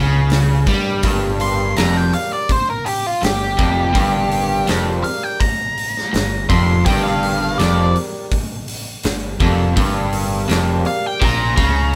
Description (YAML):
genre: blues rock power trio and southern rock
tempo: 82 BPM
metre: 4/4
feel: straight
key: G minor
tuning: A4 = 440 Hz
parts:
  - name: crunchy overdriven guitar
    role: riff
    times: 0.0-12.0 s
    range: F2 to G3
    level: -21 LUFS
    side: equal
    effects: none
  - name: overdriven picked electric bass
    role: bass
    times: 0.0-12.0 s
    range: F1 to G2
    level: -23 LUFS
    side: equal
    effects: none
  - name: big rock drum kit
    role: drums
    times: 0.3-11.7 s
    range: hi-hat, kick drum, snare drum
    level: -24 LUFS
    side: equal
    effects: none
  - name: mellow tonewheel organ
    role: sustained chords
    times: 0.7-11.3 s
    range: G4 to D5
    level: -30 LUFS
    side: equal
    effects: slow rotary speaker
  - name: octave-fuzz lead guitar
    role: melody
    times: 1.4-12.0 s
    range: F4 to C6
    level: -23 LUFS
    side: equal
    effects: distortion
room: moderate studio reverb, RT60 0.6 s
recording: band playing live in one room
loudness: -18 LUFS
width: mono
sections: 0.0-12.0 A section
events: lead electric guitar solo 0.0-12.0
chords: 0.0 Gm